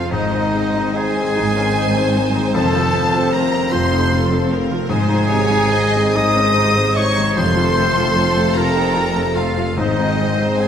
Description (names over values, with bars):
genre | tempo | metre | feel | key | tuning
cinematic | 50 BPM (dotted quarters) | 6/8 | uneven beats, rubato | Ab major | A4 = 442 Hz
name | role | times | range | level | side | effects
warm studio violin section | melody | 0.0-10.7 s | Eb5 to Eb6 | -24 LUFS | left 1 dB | none
clear clarinet | second line | 0.0-10.7 s | Eb4 to Eb5 | -24 LUFS | left 1 dB | none
hollow concert flute | second line | 0.0-10.7 s | Eb5 to Eb6 | -25 LUFS | left 1 dB | none
rich studio violin section | second line | 0.0-10.7 s | A4 to Eb5 | -26 LUFS | left 1 dB | none
warm oboe | second line | 0.0-10.7 s | Eb4 to Eb5 | -26 LUFS | right 1 dB | none
felt-muted upright piano | accompaniment | 0.0-10.7 s | F2 to Eb5 | -23 LUFS | left 2 dB | none
warm studio viola section | accompaniment | 0.0-10.7 s | Eb3 to A4 | -27 LUFS | right 1 dB | none
mellow French horn section | sustained chords | 0.0-10.7 s | C3 to C4 | -25 LUFS | left 3 dB | none
concert harp | arpeggios | 0.0-10.7 s | F2 to C6 | -28 LUFS | left 7 dB | none
dark studio double bass section | bass | 0.1-10.7 s | F1 to Ab1 | -23 LUFS | right 3 dB | none
warm studio cello section | bass | 0.1-10.7 s | F2 to Ab2 | -23 LUFS | right 2 dB | none
timpani | percussion | 9.8-10.7 s | Ab2 | -27 LUFS | equal | none
room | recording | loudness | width
wet scoring stage reverb, RT60 1.9 s | lossy compression artefacts | -14 LUFS | side -8 dB against mid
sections
0.0-10.7 A section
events
none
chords
0.1 Ab; 2.6 F; 4.9 Ab; 7.4 F; 9.8 Ab